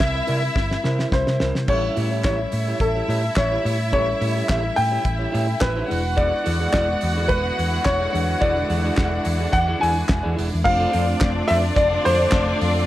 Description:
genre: disco.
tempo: 107 BPM.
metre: 4/4.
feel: straight.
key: unclear.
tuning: A4 = 444 Hz.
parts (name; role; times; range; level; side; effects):
rich studio violin section; second line; 0.0-12.9 s; D4 to Gb5; -26 LUFS; equal; none.
electric guitar at the edge of break-up; accompaniment; 0.0-12.8 s; E4 to D5; -31 LUFS; right 4 dB; none.
mellow tine electric piano; accompaniment; 0.0-12.9 s; G3 to C5; -32 LUFS; left 2 dB; medium stereo tremolo.
hollow-body short-scale fingered electric bass; bass; 0.0-12.9 s; E1 to C3; -24 LUFS; equal; none.
damped 70s drum kit; drums; 0.0-12.7 s; crash cymbal, handclaps, hi-hat, kick drum, snare drum; -25 LUFS; equal; none.
warm baby grand piano; melody; 1.1-12.6 s; A4 to G#5; -23 LUFS; left 1 dB; none.
clear studio string section; sustained chords; 6.2-12.9 s; D3 to F4; -29 LUFS; equal; none.
room: studio ambience.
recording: none.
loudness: -18 LUFS.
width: side -14 dB against mid.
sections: 0.0-1.7 A section; 1.7-10.7 B section; 10.7-12.9 C section.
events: drum fill 0.6-1.7.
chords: 0.0 C7; 1.7 A7; 5.9 E7; 10.7 Dm7/F.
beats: 0.00 0.56 1.12 | 1.69 2.25 2.81 3.37 | 3.93 4.49 5.05 5.62 | 6.18 6.74 7.30 7.86 | 8.42 8.98 9.54 10.10 | 10.65 11.21 11.77 12.33.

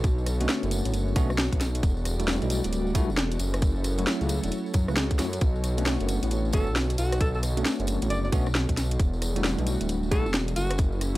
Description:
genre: UK garage, two-step garage.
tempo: 134 BPM.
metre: 4/4.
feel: swing 63% on 16ths.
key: B minor.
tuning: A4 = 440 Hz.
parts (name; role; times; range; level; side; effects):
airy breathy pad; sustained chords; 0.0-11.2 s; D3 to D5; -39 LUFS; equal; chorus, sidechain pumping.
dark detuned saw bass; bass; 0.0-11.2 s; D1 to F#2; -27 LUFS; equal; none.
electronic kick drum; drums; 0.0-10.9 s; none; -24 LUFS; equal; overdrive.
garage drum kit; drums; 0.0-11.2 s; hi-hat, rim click, snare drum; -29 LUFS; equal; overdrive.
tambourine; percussion; 0.0-11.2 s; none; -41 LUFS; left 2 dB; none.
bell-like tine electric piano; stabs; 0.4-11.2 s; F#3 to B4; -32 LUFS; equal; medium stereo tremolo, analog delay.
bright alto saxophone; melody; 6.5-10.8 s; F#4 to D5; -32 LUFS; equal; analog delay.
room: little or no reverb.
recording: dry, gritty hardware recording.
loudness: -23 LUFS.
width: side -17 dB against mid.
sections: 0.0-11.2 A section.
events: none.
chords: 0.0 Bm9; 1.8 Em11; 3.4 F#m7; 5.4 Bm9; 9.0 Em11; 10.6 F#m7.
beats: | 0.04 0.49 0.94 1.38 | 1.83 2.28 2.73 3.17 | 3.62 4.07 4.52 4.97 | 5.41 5.86 6.31 6.76 | 7.21 7.65 8.10 8.55 | 9.00 9.44 9.89 10.34 | 10.79.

